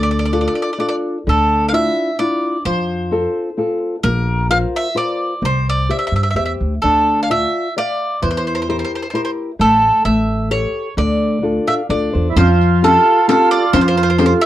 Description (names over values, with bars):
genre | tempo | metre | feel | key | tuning
italian folk, Italian serenade | 130 BPM | 3/4 | straight | D minor | A4 = 441 Hz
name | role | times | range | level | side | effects
bowl-back mandolin | melody | 0.0-14.5 s | A4 to F5 | -17 LUFS | right 1 dB | none
nylon-string guitar | accompaniment | 0.0-14.5 s | D3 to F5 | -20 LUFS | left 2 dB | none
upright bass | bass | 0.0-14.3 s | A1 to G2 | -18 LUFS | equal | none
mellow accordion | second line | 12.3-14.5 s | E4 to F4 | -19 LUFS | right 11 dB | none
riq | percussion | 12.4-14.4 s | none | -18 LUFS | left 3 dB | none
room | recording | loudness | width
moderate small room ambience, RT60 0.5 s | worn, warbling old tape, cassette tape, warbly pitch drift | -14 LUFS | side -13 dB against mid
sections
0.0-1.3 A section; 1.3-12.4 A section; 12.4-14.5 B section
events
nylon-string guitar fill 11.4-12.4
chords
0.0 Dm; 1.3 Dmadd9; 2.7 F; 4.0 Bbsus2; 5.4 C; 6.8 Dmadd9; 8.2 Edim; 9.6 N.C.; 10.1 A7; 11.0 Dm; 12.4 Fadd9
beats
0.32 0.79 | 1.27 1.73 2.20 | 2.66 3.12 3.58 | 4.03 4.49 4.96 | 5.42 5.89 6.36 | 6.83 7.30 7.76 | 8.22 8.68 9.14 | 9.60 10.05 10.51 | 10.97 11.43 11.89 | 12.36 12.82 13.28 | 13.73 14.18